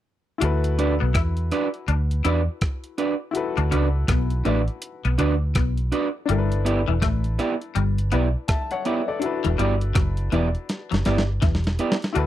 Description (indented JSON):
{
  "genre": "lovers rock reggae",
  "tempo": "82 BPM",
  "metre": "4/4",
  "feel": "swing 62% on 16ths",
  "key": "D major",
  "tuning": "A4 = 440 Hz",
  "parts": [
    { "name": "clear grand piano", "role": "accompaniment", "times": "0.4-12.3 s", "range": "D4 to A5", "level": "-30 LUFS", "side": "left 6 dB", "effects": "slapback echo" },
    { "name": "twangy electric guitar", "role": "riff", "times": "0.4-12.3 s", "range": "E3 to E4", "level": "-28 LUFS", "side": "left 9 dB", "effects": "ensemble chorus" },
    { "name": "vintage muted fingered electric bass", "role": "bass", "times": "0.4-12.3 s", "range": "E1 to E2", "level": "-22 LUFS", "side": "equal", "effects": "none" },
    { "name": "dusty soul sampler-style drum kit", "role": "drums", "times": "0.4-12.3 s", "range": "hi-hat, kick drum, rim click, snare drum", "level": "-24 LUFS", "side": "equal", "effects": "none" },
    { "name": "electric guitar through a small old amp", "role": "stabs", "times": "0.8-11.9 s", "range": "B3 to D5", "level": "-24 LUFS", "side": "right 4 dB", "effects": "vibrato effect" }
  ],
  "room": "little or no reverb",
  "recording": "dry, close 1970s-style studio recording",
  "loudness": "-20 LUFS",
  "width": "side -12 dB against mid",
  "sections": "0.4-12.2 A section",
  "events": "drum fill 10.7-12.2",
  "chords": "0.4 D6; 6.3 G6; 9.2 Em7",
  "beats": "| 0.42 1.15 1.88 2.62 | 3.35 4.08 4.82 5.55 | 6.28 7.02 7.75 8.49 | 9.22 9.95 10.69 11.42 | 12.16"
}